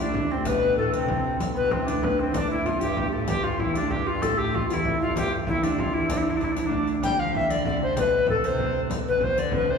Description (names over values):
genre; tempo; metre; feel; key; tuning
medieval dance; 128 BPM (dotted quarters); 6/8; straight; D dorian; A4 = 440 Hz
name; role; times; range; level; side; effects
tenor recorder; melody; 0.0-9.8 s; C4 to G5; -24 LUFS; left 2 dB; none
concert harp; second line; 0.0-9.5 s; A3 to A4; -31 LUFS; right 3 dB; none
warm viola da gamba; second line; 0.0-9.8 s; D2 to G3; -31 LUFS; left 2 dB; none
pipe organ, principal chorus; drone; 0.0-9.8 s; D2; -33 LUFS; left 1 dB; none
frame drum; percussion; 0.1-9.7 s; none; -32 LUFS; right 1 dB; none
riq; percussion; 0.5-9.5 s; none; -38 LUFS; left 3 dB; none
room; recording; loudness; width
wet church reverb, RT60 3.1 s; band playing live in one room, small room ambience; -22 LUFS; side -6 dB against mid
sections
0.0-7.0 A section; 7.0-9.8 A section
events
none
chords
none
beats
| 0.46 0.93 | 1.40 1.87 | 2.35 2.82 | 3.29 3.76 | 4.23 4.70 | 5.17 5.64 | 6.10 6.57 | 7.04 7.51 | 7.97 8.44 | 8.91 9.37